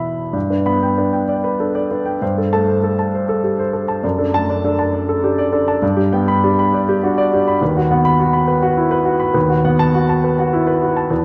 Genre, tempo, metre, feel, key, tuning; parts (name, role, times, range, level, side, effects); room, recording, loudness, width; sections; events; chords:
classical, romantic character piece for solo piano; 73-106 BPM; 3/4; rubato; G major; A4 = 438 Hz
clear grand piano; solo; 0.0-11.2 s; D#2 to B5; -17 LUFS; equal
wet concert hall reverb, RT60 2.2 s; recorded in a church or concert hall; -17 LUFS; mono
0.3-11.2 A section
0.3 G; 2.2 Am7/G; 4.0 D/F#; 5.8 G; 7.6 B/D#; 9.4 B7/D#